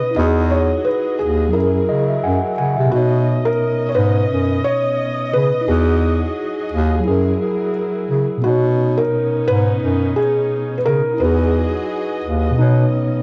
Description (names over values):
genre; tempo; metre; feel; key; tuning
hip hop; 87 BPM; 4/4; swing 55% on 16ths; B major; A4 = 440 Hz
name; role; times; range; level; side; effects
felt-muted upright piano; melody; 0.0-13.2 s; F#4 to D#5; -23 LUFS; equal; cassette tape, analog delay
mellow tine electric piano; accompaniment; 0.0-13.2 s; B2 to G#5; -24 LUFS; equal; cassette tape
warm studio string section; sustained chords; 0.0-13.2 s; F#3 to D#5; -30 LUFS; equal; cassette tape
mellow bass clarinet; bass; 0.2-12.9 s; D#2 to C#3; -20 LUFS; equal; none
room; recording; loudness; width
light reverb; home recording on cassette; -18 LUFS; mono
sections
0.0-13.2 A section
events
none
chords
0.2 Emaj9; 1.5 F#9; 2.9 Badd9; 5.7 Emaj9; 7.1 F#9; 8.4 Badd9; 11.2 Emaj9; 12.6 Badd9